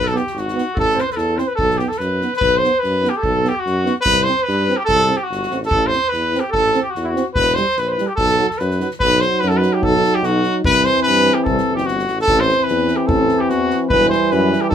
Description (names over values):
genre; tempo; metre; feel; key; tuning
balkan folk, Balkan brass band; 146 BPM; 2/4; swing 56% on 16ths; B phrygian dominant; A4 = 441 Hz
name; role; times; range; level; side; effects
clear trumpet; melody; 0.0-14.7 s; E4 to C5; -17 LUFS; equal; none
warm clarinet; second line; 0.0-8.9, 11.4-14.7 s; E4 to C5; -24 LUFS; left 3 dB; none
warm tuba; bass; 0.0-14.7 s; E1 to G2; -22 LUFS; equal; none
dark euphonium; accompaniment; 0.1-14.7 s; F#3 to E4; -24 LUFS; left 6 dB; none
warm euphonium; accompaniment; 0.1-14.7 s; D#3 to C4; -22 LUFS; right 6 dB; none
soft-mallet drum kit; percussion; 0.1-14.7 s; kick drum, snare drum; -27 LUFS; equal; none
room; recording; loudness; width
moderate booth ambience, RT60 0.2 s; minimal, uncompressed stereo recording; -14 LUFS; side -9 dB against mid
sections
0.0-2.4 A section; 2.4-9.0 B section; 9.0-14.7 B section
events
none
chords
0.0 B; 0.8 Am; 1.6 B; 4.1 C; 5.7 Am; 7.4 Em; 8.2 B; 10.6 C; 12.3 Am; 13.9 Em